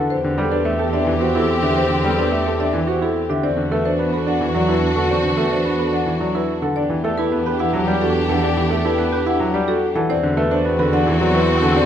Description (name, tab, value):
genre	classical, minimalist pattern music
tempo	108 BPM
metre	3/4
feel	straight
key	unclear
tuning	A4 = 438 Hz
part	marimba with medium mallets	melody	0.0-11.9 s	G4 to F#5	-23 LUFS	left 7 dB	none
part	clear concert grand piano	accompaniment	0.0-11.8 s	D3 to B3	-23 LUFS	left 1 dB	none
part	clear baby grand piano	arpeggios	0.0-11.9 s	C4 to B4	-23 LUFS	right 6 dB	none
part	clear clarinet	second line	0.1-11.9 s	F#4 to G4	-27 LUFS	right 3 dB	none
part	rich studio string section	sustained chords	0.1-11.9 s	C4 to G4	-25 LUFS	left 1 dB	none
part	warm studio double bass section	bass	0.1-11.9 s	E2	-24 LUFS	right 2 dB	none
room	moderate recital hall reverb, RT60 1.7 s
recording	none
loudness	-16 LUFS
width	side -9 dB against mid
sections	0.0-11.9 A section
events	none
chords	0.1 Am11/E; 3.4 D69/E; 6.8 Em9; 10.1 D13/E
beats	| 0.10 0.66 1.21 | 1.77 2.32 2.88 | 3.44 3.99 4.55 | 5.10 5.66 6.21 | 6.77 7.32 7.88 | 8.44 8.99 9.55 | 10.10 10.66 11.21 | 11.77